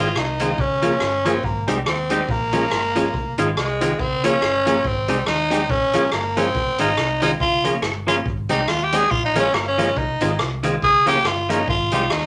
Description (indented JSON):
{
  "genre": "ska",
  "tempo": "141 BPM",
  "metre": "4/4",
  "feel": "swing 57% on 8ths",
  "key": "F minor",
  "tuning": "A4 = 436 Hz",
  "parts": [
    { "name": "growling tenor saxophone", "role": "melody", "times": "0.0-12.3 s", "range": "Ab3 to Ab4", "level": "-23 LUFS", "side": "equal", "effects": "none" },
    { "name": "clean electric guitar", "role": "accompaniment", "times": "0.0-12.0 s", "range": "Eb3 to G4", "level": "-27 LUFS", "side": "equal", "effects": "slapback echo" },
    { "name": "percussive tonewheel organ", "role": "stabs", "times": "0.0-12.0 s", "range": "Ab3 to Ab4", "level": "-27 LUFS", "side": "equal", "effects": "overdrive, chorus vibrato, slow rotary speaker" },
    { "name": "vintage muted fingered electric bass", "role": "bass", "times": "0.0-12.3 s", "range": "F1 to Eb2", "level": "-31 LUFS", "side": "equal", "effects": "none" },
    { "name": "swinging big-band drum kit", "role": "drums", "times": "0.2-12.2 s", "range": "hi-hat, kick drum, rim click", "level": "-29 LUFS", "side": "equal", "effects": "slapback echo" }
  ],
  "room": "wet small room reverb, RT60 0.5 s",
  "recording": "none",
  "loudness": "-20 LUFS",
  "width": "mono",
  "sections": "0.0-12.3 A section",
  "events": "tenor saxophone solo 0.0-12.3",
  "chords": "0.0 Fm7; 0.6 Db6; 1.4 Abmaj7; 2.3 Bbm7; 3.1 Fm7; 4.0 Db6; 4.8 Abmaj7; 5.7 Bbm7; 6.5 Fm7; 7.4 Db6; 8.3 Abmaj7; 9.1 Bbm7; 10.0 Fm7; 10.8 Db6; 11.7 Abmaj7",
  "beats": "0.16 0.58 1.01 | 1.44 1.86 2.29 2.71 | 3.14 3.57 3.99 4.42 | 4.84 5.27 5.70 6.12 | 6.55 6.97 7.40 7.83 | 8.26 8.68 9.11 9.54 | 9.96 10.39 10.82 11.25 | 11.68 12.10"
}